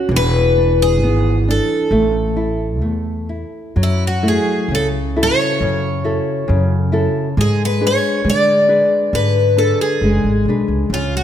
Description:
fado-style ballad; 67 BPM; 2/4; rubato; F# minor from 3.8 s; A4 = 440 Hz
picked twelve-string acoustic guitar; melody; 0.0-11.2 s; E4 to D5; -17 LUFS; left 1 dB
nylon-string guitar; accompaniment; 0.0-11.2 s; C#3 to B4; -19 LUFS; equal
upright bass; bass; 0.1-11.2 s; E1 to D3; -18 LUFS; equal
moderate concert hall reverb, RT60 1.9 s; -14 LUFS; side -10 dB against mid
0.0-3.8 A section; 3.8-11.2 B section
0.1 E7; 1.9 A5; 3.8 F#m7; 7.4 G#dim

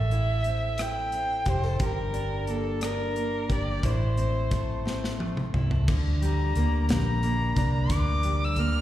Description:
six-eight pop ballad; 59 BPM (dotted quarters); 6/8; straight; A4 = 440 Hz
rich violin; melody; 0.0-8.8 s; A4 to F6; -31 LUFS; left 1 dB; slapback echo, analog delay
fingerpicked steel-string acoustic guitar; accompaniment; 0.0-8.8 s; G2 to A4; -31 LUFS; right 1 dB; slapback echo
vintage muted fingered electric bass; bass; 0.0-8.8 s; F1 to D2; -27 LUFS; equal
modern studio drum kit; drums; 0.1-8.7 s; crash cymbal, hi-hat, kick drum, rim click, snare drum, toms; -30 LUFS; equal
small room ambience; live gig heard through the venue's PA, recital hall reverb; -24 LUFS; side -13 dB against mid
0.0-5.9 A section; 5.9-8.8 B section
drum fill 4.9-5.9
0.0 Am; 1.8 Gm; 3.8 Am; 5.9 Gm

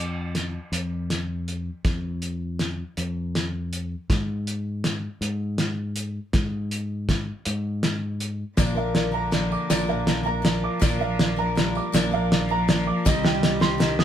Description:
indie folk with a building arrangement; 54 BPM (dotted quarters); 6/8; straight; A4 = 439 Hz
fingered electric bass; bass; 0.0-14.0 s; Bb1 to Ab2; -29 LUFS; left 1 dB
cloth-damped thuddy drum kit; drums; 0.3-14.0 s; hi-hat, kick drum, snare drum; -23 LUFS; equal
warm cello; second line; 8.6-14.0 s; D3 to G3; -30 LUFS; right 2 dB
picked twelve-string acoustic guitar; accompaniment; 8.6-14.0 s; Bb2 to Bb4; -28 LUFS; left 4 dB
dark upright piano; arpeggios; 8.6-14.0 s; D5 to Eb6; -28 LUFS; right 4 dB
group handclap; percussion; 8.6-13.3 s; -36 LUFS; left 4 dB
tambourine; percussion; 8.6-14.0 s; -39 LUFS; left 5 dB
moderate studio ambience, RT60 0.5 s; band playing live in one room; -22 LUFS; side -10 dB against mid
0.0-14.0 A section
build-up 0.0-14.0; drum fill 0.0-14.0
0.0 N.C.; 8.6 Bb; 13.1 Cm

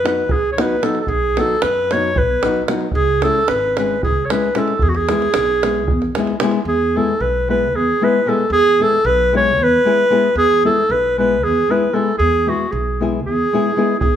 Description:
balkan folk, Balkan wedding band; 227 BPM (eighths); 7/8; straight; E major; A4 = 440 Hz
warm clarinet; melody; 0.0-14.2 s; F#4 to C#5; -16 LUFS; right 1 dB
nylon-string guitar; accompaniment; 0.0-13.9 s; F#3 to G#4; -21 LUFS; left 4 dB
upright bass; bass; 0.0-14.2 s; G#1 to F#2; -23 LUFS; equal
davul; percussion; 0.1-6.6, 14.0-14.1 s; -22 LUFS; right 2 dB
moderate large studio reverb, RT60 1.1 s; band playing live in one room; -14 LUFS; side -9 dB against mid
0.0-6.7 A section; 6.7-14.2 A section
0.0 B; 2.9 C#m; 4.8 E

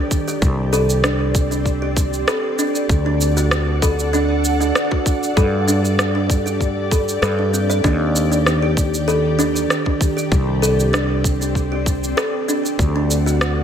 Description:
organic downtempo; 97 BPM; 4/4; swing 53% on 16ths; A4 = 437 Hz
ethereal airy pad; sustained chords; 0.0-13.6 s; Eb3 to F#5; -24 LUFS; left 2 dB; ensemble chorus, built-in reverb, sidechain pumping
kalimba; arpeggios; 0.0-13.3 s; C4 to D5; -21 LUFS; right 2 dB; tape echo
electronic kick drum; drums; 0.1-12.9 s; -19 LUFS; equal
electronic shaker and rim click; drums; 0.1-13.5 s; -23 LUFS; right 1 dB
fretless electric bass; bass; 0.4-13.6 s; C2 to G2; -20 LUFS; equal
light reverb, digital ambience; -16 LUFS; side -8 dB against mid
0.0-13.6 A section
0.4 C5; 2.9 D; 5.4 Gsus2; 7.8 Ebmaj7; 10.3 C5; 12.8 D

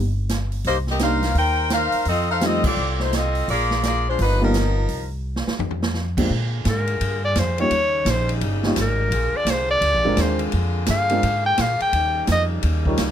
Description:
jazz, big band swing; 170 BPM; 4/4; swing 64% on 8ths; Bb mixolydian; A4 = 439 Hz
upright bass; bass; 0.0-13.1 s; G1 to C3; -23 LUFS; equal
swinging big-band drum kit; drums; 0.3-13.1 s; crash cymbal, hi-hat, kick drum, ride cymbal, snare drum, toms; -27 LUFS; right 2 dB
warm saxophone section; melody; 0.7-5.1 s; F3 to G5; -21 LUFS; left 1 dB
warm upright piano; accompaniment; 1.0-13.0 s; G3 to Bb4; -24 LUFS; right 1 dB
clear saxophone section; sustained chords; 6.3-13.1 s; Db3 to Ab4; -30 LUFS; left 2 dB
bright clarinet; melody; 6.7-12.4 s; Bb4 to G5; -21 LUFS; left 1 dB
light reverb; close, detailed microphones; -18 LUFS; side -10 dB against mid
0.0-6.3 A section; 6.3-13.1 B section
band accent 2.6; drum fill 5.2-5.9; clarinet solo 6.3-13.1
0.0 N.C.; 0.7 Cm7; 2.1 F7; 3.5 Bb7; 4.2 G7alt; 4.9 Cm; 5.6 F5; 6.3 Bb7; 7.7 Eb7; 9.1 Bb7; 11.9 Eb7

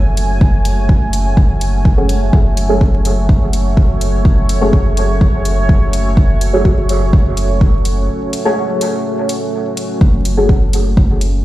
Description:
dub techno; 125 BPM; 4/4; straight; F# minor; A4 = 441 Hz
deep dark ambient pad; sustained chords; 0.0-11.4 s; A3 to G#5; -20 LUFS; right 1 dB; chorus, built-in reverb, sidechain pumping
warm sub bass; bass; 0.0-11.4 s; F#1; -16 LUFS; equal; sidechain pumping
electronic hi-hat; drums; 0.2-11.3 s; -26 LUFS; left 1 dB
electronic kick drum; drums; 0.4-11.1 s; -11 LUFS; equal
deep mellow chord stab; stabs; 2.0-10.5 s; F#4 to C#5; -19 LUFS; equal; chorus, phaser, cassette tape, dub echo
little or no reverb; played on a big sound system in a bare room, stone room reverb, vinyl crackle; -11 LUFS; side -15 dB against mid
0.0-11.4 A section
break 8.1-10.0
0.0 F#madd9

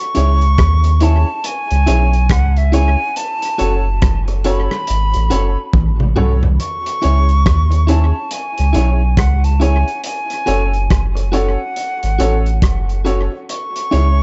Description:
roots reggae; 70 BPM; 4/4; swing 61% on 16ths; C# minor; A4 = 439 Hz
hollow silver concert flute; melody; 0.0-14.2 s; E5 to C#6; -24 LUFS; equal; dub echo
electric guitar at the edge of break-up; accompaniment; 0.1-14.1 s; E4 to C#5; -28 LUFS; equal; dub echo
crunchy breakbeat drum kit; drums; 0.1-14.2 s; hi-hat, kick drum, rim click, toms; -21 LUFS; equal
clear upright piano; stabs; 0.2-14.2 s; C#4 to C#5; -25 LUFS; equal
warm sub bass; bass; 0.2-14.2 s; F#1 to D#2; -16 LUFS; equal
small room reverb; dark, warm production, nothing above 7.9 kHz; -15 LUFS; mono
0.0-14.2 A section
drum fill 5.7-6.6
0.0 C#m; 3.2 F#m; 6.6 C#m; 10.0 F#m; 13.5 C#m

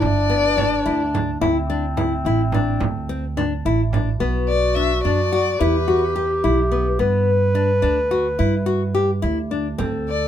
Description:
contemporary instrumental, chamber music in an uneven meter; 215 BPM (eighths); 5/8; straight; G major; A4 = 440 Hz
dark violin; melody; 0.0-1.1, 4.5-6.4, 10.1-10.3 s; B4 to E5; -22 LUFS; left 4 dB
dark clarinet; second line; 0.0-10.3 s; C4 to B4; -23 LUFS; equal
nylon-string guitar; arpeggios; 0.0-10.1 s; B3 to G4; -22 LUFS; left 4 dB
upright bass; bass; 0.0-10.3 s; G1 to G2; -22 LUFS; right 3 dB
frame drum; percussion; 0.0-4.2, 9.8-10.0 s; -26 LUFS; right 6 dB
light reverb; minimal, uncompressed stereo recording; -17 LUFS; side -10 dB against mid
0.0-4.2 A section; 4.2-10.3 B section
0.0 G5; 1.4 D5; 4.2 Bm; 5.6 Em; 7.0 G

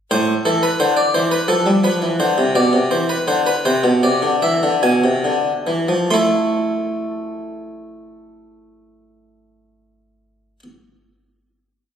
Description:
classical, baroque-style two-part invention for harpsichord; 67-88 BPM; 4/4; straight; A minor; A4 = 441 Hz
harpsichord; solo; 0.1-10.6 s; A2 to C6; -15 LUFS; equal
wet concert hall reverb, RT60 2.2 s; recorded on a phone in the room, club reverb, faint mains hum; -15 LUFS; side -8 dB against mid
0.1-6.1 exposition; 6.1-9.7 final chord
slowing down 0.1-7.9
0.1 Am; 1.5 Dm; 2.9 Cmaj9; 4.4 E7; 6.1 Am

